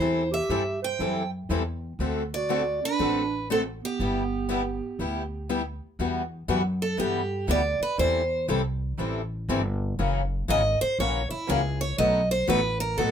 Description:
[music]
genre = acoustic string swing (jazz manouche)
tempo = 120 BPM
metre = 4/4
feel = swing 64% on 8ths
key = G major, E minor from 6.0 s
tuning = A4 = 440 Hz
[part]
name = picked steel-string acoustic guitar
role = melody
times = 0.0-13.1 s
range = E4 to G5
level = -27 LUFS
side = right 2 dB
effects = none
[part]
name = breathy clarinet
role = second line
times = 0.0-5.5 s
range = B3 to C5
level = -30 LUFS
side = right 5 dB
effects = none
[part]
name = picked steel-string acoustic guitar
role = accompaniment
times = 0.0-13.1 s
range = B2 to A4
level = -29 LUFS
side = left 8 dB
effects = none
[part]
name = picked swing-style acoustic guitar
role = accompaniment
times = 0.0-13.1 s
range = B2 to A#4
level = -34 LUFS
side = right 6 dB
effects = none
[part]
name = upright bass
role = bass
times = 0.0-13.1 s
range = F#1 to A2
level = -30 LUFS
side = equal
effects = none
[sound]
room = light reverb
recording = minimal, uncompressed stereo recording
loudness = -24 LUFS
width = side -8 dB against mid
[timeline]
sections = 0.0-6.0 A section; 6.0-13.1 B section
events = steel-string acoustic guitar solo 6.0-13.1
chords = 0.0 Am7/E; 2.0 D7; 4.0 G6; 6.0 Emadd9; 8.0 C6; 10.0 F#7; 12.0 B7

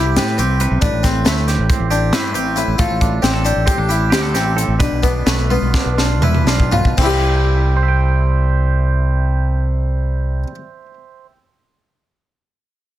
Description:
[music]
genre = math rock and midwest emo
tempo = 231-275 BPM (eighths)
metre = 9/8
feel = straight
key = C major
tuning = A4 = 440 Hz
[part]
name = twangy electric guitar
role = accompaniment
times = 0.0-11.4 s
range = A2 to G5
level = -23 LUFS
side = right 8 dB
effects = spring reverb
[part]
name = harpsichord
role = arpeggios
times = 0.0-10.6 s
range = A3 to C5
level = -21 LUFS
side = left 5 dB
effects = tape echo
[part]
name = growling fingered electric bass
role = bass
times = 0.0-10.4 s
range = A1 to A2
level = -17 LUFS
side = equal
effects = overdrive
[part]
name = crisp fusion drum kit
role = drums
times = 0.2-7.1 s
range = crash cymbal, hi-hat, kick drum, snare drum, toms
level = -18 LUFS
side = equal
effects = none
[sound]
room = light reverb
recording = dense, heavily limited modern master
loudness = -14 LUFS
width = side -13 dB against mid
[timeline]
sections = 0.0-7.0 A section; 7.0-11.7 B section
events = slowing down 3.2-7.0; drum fill 5.5-7.0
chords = 0.0 Cmaj7; 0.8 Am9; 2.8 F69/A; 4.8 Bdim; 7.0 Cmaj7

